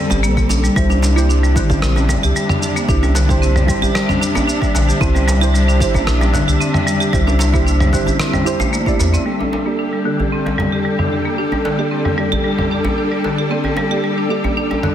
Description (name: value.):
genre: organic downtempo.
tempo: 113 BPM.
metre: 4/4.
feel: straight.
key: unclear.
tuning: A4 = 443 Hz.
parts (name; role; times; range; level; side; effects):
deep mellow chord stab; accompaniment; 0.0-14.9 s; Bb3 to D5; -24 LUFS; right 6 dB; chorus, vintage 12-bit sampler grit, sidechain pumping, digital delay.
warm symphonic string section; sustained chords; 0.0-14.9 s; C3 to A4; -23 LUFS; equal; sidechain pumping.
marimba with hard mallets; arpeggios; 0.0-14.9 s; D3 to G4; -19 LUFS; left 2 dB; low-pass filter, digital delay.
warm sub bass; bass; 0.1-9.2 s; G1 to E2; -16 LUFS; equal; sidechain pumping.
dusty soul sampler-style drum kit; drums; 0.1-14.9 s; cabasa, rim click, toms; -23 LUFS; equal; low-pass filter on perc, soft clipping on snare, low-pass filter on snare, low-pass filter on toms, low-pass filter on room.
djembe; percussion; 0.1-14.9 s; none; -25 LUFS; right 1 dB; none.
electronic kick drum; drums; 0.4-9.0 s; none; -20 LUFS; equal; none.
wind-like tuned noise texture; texture; 1.7-14.9 s; E5 to G5; -29 LUFS; right 1 dB; built-in reverb.
room: moderate echo chamber reverb, RT60 2.1 s.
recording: dense, heavily limited modern master.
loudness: -14 LUFS.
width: side -10 dB against mid.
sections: 0.0-9.3 A section; 9.3-14.9 B section.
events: filter sweep on drum 9.3-14.9; filter sweep on marimba 9.3-14.9; filter sweep on synth stab 9.3-14.9.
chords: 0.0 Gmadd9; 0.8 C; 9.3 Gmadd9.